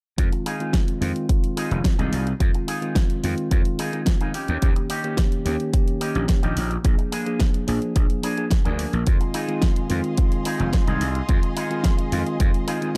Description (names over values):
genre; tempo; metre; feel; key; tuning
nu-disco, nu disco; 108 BPM; 4/4; straight; F minor; A4 = 440 Hz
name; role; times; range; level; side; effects
bell-like tine electric piano; accompaniment; 0.2-13.0 s; Eb3 to Bb4; -30 LUFS; equal; sidechain pumping, low-pass filter, delay
gritty slap bass; bass; 0.2-12.5 s; F1 to F2; -27 LUFS; equal; overdrive
electronic kick drum; drums; 0.2-12.5 s; none; -23 LUFS; equal; none
pop drum kit; drums; 0.2-13.0 s; hi-hat, snare drum; -32 LUFS; equal; none
electric guitar with an envelope filter; riff; 0.3-12.9 s; Bb3 to Ab4; -34 LUFS; equal; lush chorus, delay
rich symphonic string section; sustained chords; 9.1-13.0 s; Ab4 to C6; -37 LUFS; equal; vintage 12-bit sampler grit, sidechain pumping
room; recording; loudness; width
little or no reverb; dark, warm production; -22 LUFS; mono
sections
0.2-13.0 A section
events
filter sweep on tine electric piano 0.2-13.0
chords
0.2 Fm7; 4.3 Eb7; 6.8 Bb7; 9.1 Fm7